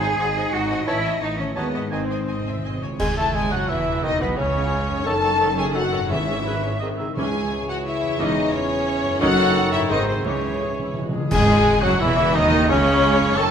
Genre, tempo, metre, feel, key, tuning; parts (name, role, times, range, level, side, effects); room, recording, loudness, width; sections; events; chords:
classical, dramatic, fast romantic movement for symphony orchestra; 173 BPM; 3/4; straight; C# minor; A4 = 440 Hz
warm symphonic violin section; melody; 0.0-13.5 s; B4 to A5; -27 LUFS; left 3 dB
rich symphonic violin section; second line; 0.0-13.5 s; B3 to A5; -32 LUFS; left 2 dB
silver concert flute; second line; 0.0-13.4 s; B4 to C#6; -28 LUFS; left 2 dB
rich symphonic viola section; accompaniment; 0.0-13.5 s; C#3 to E5; -28 LUFS; right 1 dB
clear French horn section; sustained chords; 0.0-13.5 s; C#3 to A4; -29 LUFS; left 3 dB
concert harp; arpeggios; 0.0-13.5 s; E2 to A4; -32 LUFS; left 5 dB
rich chamber double bass section; bass; 0.0-13.5 s; E1 to D#2; -28 LUFS; right 2 dB
rich symphonic cello section; bass; 0.0-13.5 s; C#2 to G#4; -28 LUFS; right 2 dB
timpani; percussion; 0.0-2.9, 6.1-7.7, 10.3-11.8 s; G#2 to C#3; -31 LUFS; equal
clear clarinet; second line; 0.9-13.5 s; B3 to D#5; -29 LUFS; equal
warm cor anglais; second line; 0.9-13.5 s; C#4 to A5; -29 LUFS; right 2 dB
warm bassoon; accompaniment; 0.9-13.5 s; B2 to A3; -30 LUFS; right 2 dB
clash cymbals and concert bass drum; percussion; 3.0-3.7, 11.3-12.0 s; -30 LUFS; equal
moderate scoring stage reverb, RT60 2.0 s; minimal, uncompressed stereo recording, vinyl crackle; -18 LUFS; side -8 dB against mid
0.0-3.0 A section; 3.0-11.3 B section; 11.3-13.5 C section
timpani fill 1.9-3.0, 10.3-11.3; band accent 3.0-3.4, 11.3-11.7
0.0 G#7; 0.9 A; 1.6 D#m7b5; 1.9 G#; 3.0 C#m; 5.1 D#m7b5/F#; 6.1 C#m/G#; 7.2 C#m; 8.2 C#m/E; 9.2 D#m7b5/F#; 9.9 G#; 10.3 C#m; 11.3 C#m/G#; 12.4 C#m